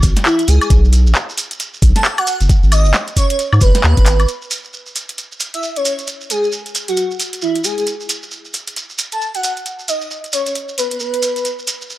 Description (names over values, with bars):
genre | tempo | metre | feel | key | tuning
UK garage, two-step garage | 134 BPM | 4/4 | swing 60% on 16ths | unclear | A4 = 440 Hz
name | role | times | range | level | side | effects
saturated sub bass | bass | 0.0-4.3 s | F#1 to G#2 | -11 LUFS | equal | none
electronic kick drum | drums | 0.0-4.0 s | none | -12 LUFS | equal | none
garage drum kit | drums | 0.0-11.8 s | handclaps, hi-hat, snare drum, woodblock | -20 LUFS | equal | none
shekere | percussion | 0.0-12.0 s | none | -24 LUFS | right 3 dB | none
airy dreamy lead | melody | 0.3-11.5 s | E4 to A5 | -20 LUFS | equal | chorus, analog delay
room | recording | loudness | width
digital ambience | dry, gritty hardware recording | -14 LUFS | side -16 dB against mid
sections
0.0-4.3 A section; 4.3-12.0 B section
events
drum fill 4.1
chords
0.0 C#5; 0.7 B5; 2.5 G#m7; 4.3 N.C.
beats
0.26 | 0.70 1.15 1.60 2.05 | 2.50 2.94 3.39 3.84 | 4.29 4.73 5.18 5.63 | 6.08 6.52 6.97 7.42 | 7.87 8.31 8.76 9.21 | 9.66 10.11 10.55 11.00 | 11.45 11.90